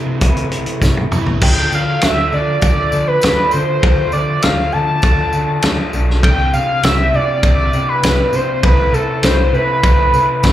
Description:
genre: indie rock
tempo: 100 BPM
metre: 4/4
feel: straight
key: unclear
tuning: A4 = 439 Hz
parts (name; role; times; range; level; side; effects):
- electric guitar through a small old amp; riff; 0.0-10.5 s; C3 to B4; -23 LUFS; left 5 dB; spring reverb, slapback echo
- raw garage guitar; riff; 0.0-1.4 s; C3 to E4; -26 LUFS; right 7 dB; overdrive, analog chorus, slapback echo, digital delay
- overdriven picked electric bass; bass; 0.0-10.5 s; A1 to D3; -18 LUFS; equal; none
- loose indie drum kit; drums; 0.2-10.5 s; crash cymbal, hi-hat, kick drum, ride cymbal, snare drum, toms; -17 LUFS; equal; none
- tambourine; percussion; 0.2-10.5 s; none; -34 LUFS; right 3 dB; none
- overdriven synth lead; melody; 1.4-10.4 s; A4 to A5; -16 LUFS; right 1 dB; distortion, chorus, slapback echo, digital delay
room: little or no reverb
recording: live gig heard through the venue's PA, club reverb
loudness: -12 LUFS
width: side -12 dB against mid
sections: 0.0-1.4 A section; 1.4-10.5 B section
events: drum fill 0.8-1.4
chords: 0.0 Amadd9/C; 1.4 Dm; 6.2 Cadd9; 8.6 Amadd9/C

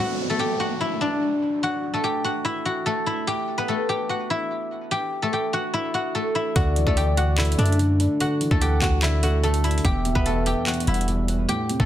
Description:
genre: hip hop, trap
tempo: 146 BPM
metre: 4/4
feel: half-time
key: unclear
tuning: A4 = 440 Hz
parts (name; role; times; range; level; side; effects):
- guzheng; melody; 0.0-11.9 s; A3 to G5; -24 LUFS; left 1 dB; low-pass filter
- downlifter; sound effects; 0.0-3.3 s; none; -32 LUFS; equal; none
- gliding portamento lead; second line; 6.6-11.1 s; D5 to F#5; -33 LUFS; left 2 dB; chorus, phaser, tape echo
- dark concert grand piano; accompaniment; 6.6-11.9 s; E2 to D4; -27 LUFS; right 1 dB; low-pass filter
- warm 808-style bass; bass; 6.6-11.9 s; D1 to F#2; -22 LUFS; equal; none
- trap drum kit; drums; 6.6-11.9 s; handclaps, hi-hat, kick drum; -26 LUFS; equal; none
room: little or no reverb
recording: dense, heavily limited modern master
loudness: -20 LUFS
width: side -12 dB against mid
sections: 0.0-11.9 A section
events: none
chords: 0.0 Dadd9; 3.3 Em; 4.9 A5; 6.6 Dadd9; 9.8 Em

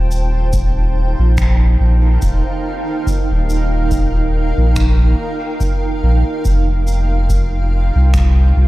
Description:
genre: ambient dub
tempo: 71 BPM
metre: 4/4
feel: swing 56% on 16ths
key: unclear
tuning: A4 = 439 Hz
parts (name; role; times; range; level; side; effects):
- granular cloud pad; sustained chords; 0.0-8.7 s; Eb4 to A5; -22 LUFS; right 2 dB; built-in reverb
- warm sub bass; bass; 0.0-8.7 s; Eb1 to C2; -13 LUFS; equal; none
- shaker and finger snaps; drums; 0.1-8.3 s; none; -31 LUFS; equal; dub echo
- electronic kick drum; drums; 0.5-8.3 s; none; -20 LUFS; equal; none
room: little or no reverb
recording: dark, warm production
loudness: -13 LUFS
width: side -18 dB against mid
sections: 0.0-8.7 A section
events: none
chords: 0.0 Ebadd9; 6.5 F7(no3)

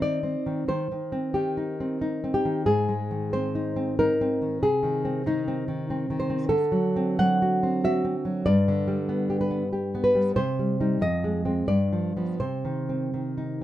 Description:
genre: romantic piece for solo classical guitar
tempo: 82-96 BPM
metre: 3/4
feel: rubato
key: C minor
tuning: A4 = 443 Hz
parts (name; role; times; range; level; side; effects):
- nylon-string guitar; solo; 0.0-13.6 s; F2 to F#5; -23 LUFS; equal; none
room: light reverb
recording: minimal, uncompressed stereo recording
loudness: -23 LUFS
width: side -13 dB against mid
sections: 0.0-13.6 A section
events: none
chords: 0.0 Cm; 0.7 Cm/Eb; 2.7 Ab; 4.6 Ab/C; 6.5 D7; 8.5 G; 10.4 Cm; 11.0 Fm; 11.7 G7; 12.4 Cm

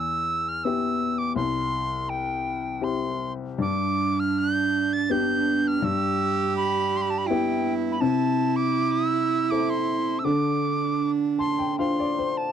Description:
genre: celtic folk, Celtic slow air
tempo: 81 BPM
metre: 3/4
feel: uneven beats, rubato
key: unclear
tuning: A4 = 437 Hz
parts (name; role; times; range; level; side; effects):
- reedy mid whistle; melody; 0.0-12.5 s; G5 to A6; -27 LUFS; right 1 dB; none
- clear upright piano; accompaniment; 0.0-12.5 s; C2 to A5; -27 LUFS; left 6 dB; none
- clear cello; second line; 3.6-12.2 s; D4 to G4; -26 LUFS; right 10 dB; none
room: little or no reverb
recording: dry, close 1970s-style studio recording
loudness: -22 LUFS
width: side -8 dB against mid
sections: 0.0-12.5 A section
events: upright piano fill 11.0-12.5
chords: 0.0 Em; 1.4 C; 3.6 G; 5.8 Em/G; 8.0 C6; 10.2 Dm7

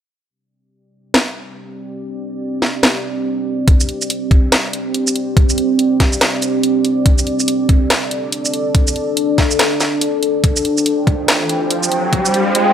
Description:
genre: deep dubstep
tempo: 142 BPM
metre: 4/4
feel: swing 60% on 16ths, half-time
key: unclear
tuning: A4 = 439 Hz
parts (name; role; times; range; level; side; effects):
- deep dark ambient pad; sustained chords; 1.8-12.7 s; C4 to G5; -17 LUFS; equal; chorus, built-in reverb
- garage drum kit; drums; 1.1-12.7 s; hi-hat, shaker, snare drum; -16 LUFS; equal; high-pass filter on snare, high-pass filter on hats, high-pass filter on perc
- electronic kick drum; drums; 3.7-12.2 s; none; -13 LUFS; equal; none
- riser; sound effects; 11.2-12.7 s; none; -20 LUFS; left 1 dB; none
room: moderate echo chamber reverb, RT60 1.5 s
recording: high-pass filter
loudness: -13 LUFS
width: side -9 dB against mid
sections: 0.3-3.7 A section; 3.7-12.7 B section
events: build-up 3.7-12.7; riser 11.2-12.7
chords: 0.3 C5; 7.1 D5; 10.4 Fsus2

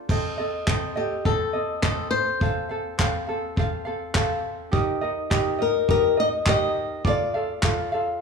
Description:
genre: acoustic pop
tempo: 104 BPM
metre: 4/4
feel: straight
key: unclear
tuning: A4 = 439 Hz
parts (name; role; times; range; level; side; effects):
- ukulele; accompaniment; 0.0-8.2 s; C4 to F5; -26 LUFS; right 2 dB; none
- vintage brush drum kit; drums; 0.1-7.8 s; crash cymbal, handclaps, kick drum; -25 LUFS; equal; none
- flamenco guitar; melody; 1.0-8.2 s; G4 to Eb5; -24 LUFS; left 4 dB; none
room: wet large studio reverb, RT60 1.5 s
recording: band playing live in one room, small room ambience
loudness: -22 LUFS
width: side -5 dB against mid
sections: 0.1-8.2 A section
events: none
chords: 0.1 Adim; 2.4 F; 4.7 Eb; 7.0 Dm

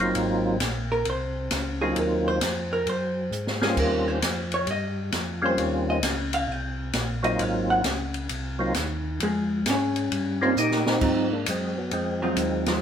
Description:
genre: soul jazz organ trio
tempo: 132 BPM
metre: 4/4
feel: swing 66% on 8ths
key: Ab mixolydian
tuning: A4 = 440 Hz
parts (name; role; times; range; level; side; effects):
- percussive tonewheel organ; melody; 0.0-12.8 s; F3 to G4; -25 LUFS; equal; slow rotary speaker, chorus vibrato
- tonewheel organ; bass; 0.0-12.8 s; Gb1 to Bb2; -30 LUFS; equal; chorus vibrato, slow rotary speaker
- open jazz drum kit; drums; 0.0-12.7 s; crash cymbal, hi-hat, kick drum, ride cymbal, snare drum; -30 LUFS; equal; none
- vintage hollow-body jazz guitar; accompaniment; 0.9-12.8 s; Gb3 to G5; -27 LUFS; equal; none
room: moderate studio reverb, RT60 0.8 s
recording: band playing live in one room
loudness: -23 LUFS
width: side -8 dB against mid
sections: 0.0-11.0 A section; 11.0-12.8 B section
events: hollow-body jazz guitar solo 0.0-11.0; drum fill 3.3-3.8, 10.6-11.0; band accent 12.6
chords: 0.0 Ab13; 3.8 Eb13; 7.4 Ab13; 9.2 Db/F; 10.1 Eb7; 11.0 Ab13

